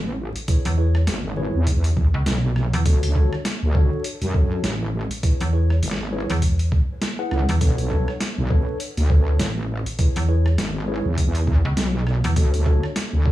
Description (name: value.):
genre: glitch hop.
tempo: 101 BPM.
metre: 4/4.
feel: swing 58% on 16ths.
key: C# phrygian.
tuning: A4 = 440 Hz.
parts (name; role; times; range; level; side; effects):
wobble bass; bass; 0.0-13.3 s; G#1 to F#2; -21 LUFS; equal; chorus, tube saturation.
boom bap sampler-style drum kit; drums; 0.4-13.1 s; hi-hat, rim click, snare drum; -29 LUFS; equal; overdrive.
mellow tine electric piano; stabs; 0.5-13.3 s; D4 to F#5; -31 LUFS; equal; medium stereo tremolo, sidechain pumping, dub echo.
electronic kick drum; drums; 0.5-13.3 s; none; -18 LUFS; equal; overdrive.
slap-like FM bass; bass; 0.7-12.3 s; C#2 to E2; -18 LUFS; equal; none.
room: little or no reverb.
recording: vinyl crackle, small room ambience.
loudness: -19 LUFS.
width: side -15 dB against mid.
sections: 0.0-13.3 A section.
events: none.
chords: 0.5 C#m7; 2.9 Dmaj7; 5.2 C#m7; 7.6 Bm9; 10.0 C#m7; 12.4 Dmaj7.